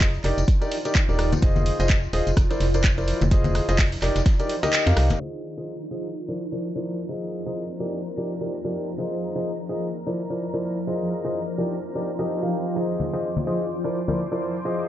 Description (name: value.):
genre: piano house.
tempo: 127 BPM.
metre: 4/4.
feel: swing 58% on 16ths.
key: F dorian.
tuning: A4 = 441 Hz.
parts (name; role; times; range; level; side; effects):
warm concert grand piano; riff; 0.0-14.9 s; F3 to F5; -27 LUFS; left 1 dB; sidechain pumping, tape echo.
organ-like FM bass; bass; 0.0-5.2 s; Eb1 to F2; -23 LUFS; equal; sidechain pumping.
dusty soul sampler-style drum kit; drums; 0.0-5.2 s; hi-hat, snare drum; -37 LUFS; equal; none.
electronic kick drum; drums; 0.0-4.4 s; none; -20 LUFS; equal; none.
house drum kit; drums; 0.0-14.9 s; crash cymbal, handclaps, hi-hat, rim click, shaker; -28 LUFS; right 1 dB; low-pass filter on snare, low-pass filter on hats, low-pass filter on cymbals, low-pass filter on perc.
tambourine and congas; percussion; 0.0-5.2, 12.8-14.9 s; none; -30 LUFS; left 3 dB; none.
granular cloud pad; texture; 0.1-14.9 s; F3 to Bb5; -31 LUFS; equal; built-in reverb, sidechain pumping.
analog string pad; sustained chords; 5.7-14.9 s; Bb4 to D6; -38 LUFS; left 2 dB; ensemble chorus, sidechain pumping.
downlifter; sound effects; 5.9-9.0 s; none; -65 LUFS; equal; none.
room: little or no reverb.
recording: low-pass filter, nothing above 8.0 kHz.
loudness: -22 LUFS.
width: side -12 dB against mid.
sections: 0.0-5.2 A section; 5.2-14.9 B section.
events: kick drops out 4.7-5.2; band accent 4.7.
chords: 0.2 Ebmaj7/F; 1.4 Fm7; 2.4 C9/F; 3.3 Ab6/F; 4.0 Ebmaj7/F; 5.2 Fm7; 6.1 C9/F; 7.1 Ab6/F; 7.8 Ebmaj7/F; 9.0 Fm7; 9.9 C9/F; 10.9 Ab6/F; 11.6 Ebmaj7/F; 12.8 Fm7; 13.7 C9/F.